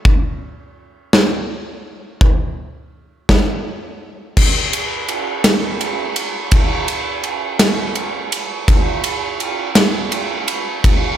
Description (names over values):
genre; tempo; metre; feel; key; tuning
rock; 56 BPM (dotted quarters); 6/8; straight; none; none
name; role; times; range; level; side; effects
big rock drum kit; drums; 0.1-11.0 s; crash cymbal, kick drum, ride cymbal, snare drum; -15 LUFS; equal; none
room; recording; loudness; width
light reverb; none; -15 LUFS; side -10 dB against mid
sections
0.0-4.4 A section; 4.4-11.2 B section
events
build-up 0.0-4.4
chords
none